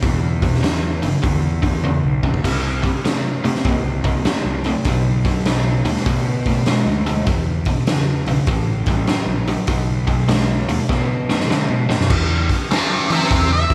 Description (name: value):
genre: blues rock power trio and southern rock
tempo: 99 BPM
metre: 4/4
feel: swing 65% on 8ths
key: unclear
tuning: A4 = 441 Hz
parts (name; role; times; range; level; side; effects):
- crunchy overdriven guitar; riff; 0.0-12.1 s; E2 to A#3; -24 LUFS; equal; none
- fuzz fingered electric bass; bass; 0.0-13.7 s; G1 to E3; -24 LUFS; equal; overdrive
- raw garage drum kit; drums; 0.0-13.7 s; crash cymbal, hi-hat, kick drum, snare drum, toms; -22 LUFS; equal; none
- octave-fuzz lead guitar; melody; 12.7-13.7 s; G4 to E5; -19 LUFS; equal; wah, distortion
room: light reverb, small room reverb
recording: none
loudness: -19 LUFS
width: mono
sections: 0.0-12.1 A section; 12.1-13.7 B section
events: drum fill 1.8-2.4, 10.9-12.1; lead electric guitar solo 12.1-13.7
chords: 0.0 E7(no3); 2.4 C5; 4.9 Bm7; 7.3 E5; 8.5 A5; 9.7 B7(no3); 12.1 Em7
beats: | 0.03 0.63 1.23 1.84 | 2.44 3.04 3.65 4.25 | 4.86 5.46 6.06 6.67 | 7.27 7.87 8.48 9.08 | 9.68 10.29 10.89 11.49 | 12.10 12.70 13.31